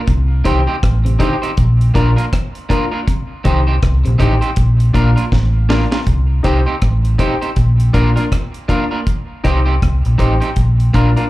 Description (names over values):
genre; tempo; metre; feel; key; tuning
roots reggae; 80 BPM; 4/4; swing 60% on 16ths; unclear; A4 = 441 Hz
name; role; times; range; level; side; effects
clean electric guitar; arpeggios; 0.1-4.3 s; C3 to Eb3; -25 LUFS; left 3 dB; slapback echo
vintage muted fingered electric bass; bass; 0.1-11.1 s; A1 to C2; -13 LUFS; equal; none
deep reggae drum kit; drums; 0.1-11.3 s; hi-hat, kick drum, rim click, snare drum; -18 LUFS; equal; none
electric guitar at the edge of break-up; accompaniment; 0.4-11.3 s; Bb3 to C5; -21 LUFS; right 4 dB; dub echo, slapback echo
warm concert grand piano; stabs; 0.4-11.3 s; D4 to C5; -22 LUFS; left 5 dB; none
room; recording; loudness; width
little or no reverb; live gig heard through the venue's PA, club reverb; -12 LUFS; side -17 dB against mid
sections
0.0-6.1 A section; 6.1-11.3 B section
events
drum fill 5.3-6.1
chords
0.1 Cm; 1.6 Bb; 3.1 Cm; 4.6 Bb; 6.1 Cm; 7.6 Bb; 9.1 Cm; 10.6 Bb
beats
| 0.07 0.82 1.57 2.32 | 3.07 3.82 4.57 5.32 | 6.07 6.82 7.57 8.32 | 9.07 9.82 10.57